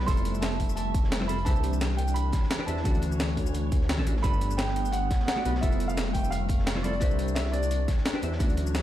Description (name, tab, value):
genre	liquid drum and bass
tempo	173 BPM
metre	4/4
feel	swing 54% on 16ths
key	unclear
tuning	A4 = 438 Hz
part	clear concert grand piano	melody	0.0-7.8 s	D5 to C6	-34 LUFS	right 2 dB	digital delay
part	glassy FM pad	sustained chords	0.0-8.8 s	E3 to E5	-35 LUFS	left 2 dB	ensemble chorus, built-in reverb, sidechain pumping
part	dark detuned saw bass	bass	0.0-8.8 s	F1 to E2	-28 LUFS	equal	none
part	crunchy breakbeat drum kit	drums	0.0-8.8 s	hi-hat, snare drum	-41 LUFS	left 1 dB	high-pass filter on hats, high-pass filter on snare, high-pass filter on room
part	hollow-body jazz guitar	accompaniment	0.1-8.8 s	E3 to G5	-35 LUFS	equal	digital delay
part	breakbeat sampler-style drum kit	drums	0.1-8.8 s	hi-hat, shaker, snare drum	-33 LUFS	equal	none
part	electronic kick drum	drums	0.1-8.5 s	none	-27 LUFS	equal	none
room	little or no reverb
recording	played on a big sound system in a bare room, large studio reverb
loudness	-24 LUFS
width	side -13 dB against mid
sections	0.0-8.8 A section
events	none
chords	0.1 Fmaj9; 1.5 Cmaj9; 2.9 Dmaj9; 4.2 Gmaj9; 5.6 Fmaj9; 7.0 Cmaj9